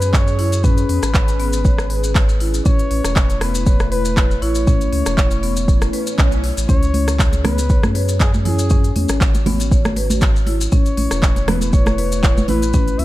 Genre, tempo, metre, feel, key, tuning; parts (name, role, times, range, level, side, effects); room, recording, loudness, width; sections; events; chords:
afro house; 119 BPM; 4/4; swing 54% on 16ths; C# minor; A4 = 443 Hz
trumpet with bucket mute; melody; 0.0-13.0 s; G#4 to E5; -26 LUFS; equal; ping-pong delay
dark analog pad; sustained chords; 0.0-13.0 s; A3 to C#5; -27 LUFS; left 1 dB; chorus, sidechain pumping
warm sub bass; bass; 0.0-13.0 s; E1 to F#2; -20 LUFS; equal; tube saturation, sidechain pumping
afro-pop drum kit; drums; 0.0-13.0 s; handclaps, hi-hat, rim click, toms; -24 LUFS; equal
maracas; percussion; 0.0-13.0 s; -30 LUFS; left 4 dB
marimba with medium mallets; arpeggios; 0.1-13.0 s; B3 to C#5; -26 LUFS; left 3 dB; sidechain pumping
electronic kick drum; drums; 0.1-12.8 s; -15 LUFS; equal
swell; sound effects; 5.8-6.7 s; -28 LUFS; right 2 dB
congas; percussion; 6.7-13.0 s; -23 LUFS; right 2 dB
small room reverb; dark, warm production; -14 LUFS; side -16 dB against mid
0.0-13.0 A section
swell 5.8-6.7
0.0 C#m7; 2.7 Aadd9; 6.7 C#5; 10.7 Aadd9